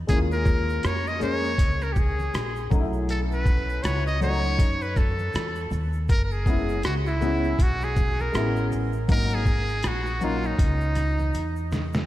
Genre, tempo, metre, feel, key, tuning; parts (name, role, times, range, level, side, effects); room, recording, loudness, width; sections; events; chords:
hip hop, jazz-hop; 80 BPM; 4/4; swing 59% on 16ths; A4 = 440 Hz
upright bass; bass; 0.0-12.1 s; Gb1 to F#2; -27 LUFS; equal
trumpet with metal mute; melody; 0.1-11.7 s; Eb4 to Eb5; -29 LUFS; equal; analog delay
dark grand piano; accompaniment; 0.1-10.5 s; F#3 to Ab4; -30 LUFS; left 2 dB; analog chorus
trip hop sampler-style drum kit; drums; 0.1-12.1 s; hi-hat, kick drum, rim click, shaker, snare drum; -25 LUFS; equal
tube shaker and congas; percussion; 0.1-12.1 s; -40 LUFS; right 1 dB
moderate lush hall reverb, RT60 2.6 s; dreamy mix soaked in reverb; -22 LUFS; side -14 dB against mid
0.0-12.1 A section
drum fill 11.3-12.1
0.1 Eb9sus4; 2.7 B9sus4; 6.1 Gb9sus4; 9.1 Ab9sus4